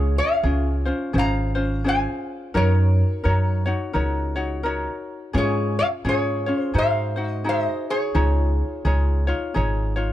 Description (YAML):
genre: Hawaiian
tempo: 86 BPM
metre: 4/4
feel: swing 60% on 8ths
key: Db major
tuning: A4 = 443 Hz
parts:
  - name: metal-body resonator slide guitar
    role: melody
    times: 0.0-10.1 s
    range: Ab4 to Bb5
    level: -25 LUFS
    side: equal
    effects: none
  - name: ukulele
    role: accompaniment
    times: 0.0-10.1 s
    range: Db4 to Db5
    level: -26 LUFS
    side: left 2 dB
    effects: none
  - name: upright bass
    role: bass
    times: 0.0-10.1 s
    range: Ab1 to Ab2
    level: -22 LUFS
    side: equal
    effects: none
room: little or no reverb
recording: dry, close 1970s-style studio recording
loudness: -20 LUFS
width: side -13 dB against mid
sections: 0.0-10.1 A section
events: none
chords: 0.0 Dbmaj7; 2.5 Gb6; 5.3 Db/Ab; 6.7 Ab7; 8.1 Dbadd9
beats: 0.44 1.14 1.84 | 2.54 3.24 3.94 4.64 | 5.35 6.05 6.75 7.45 | 8.15 8.85 9.55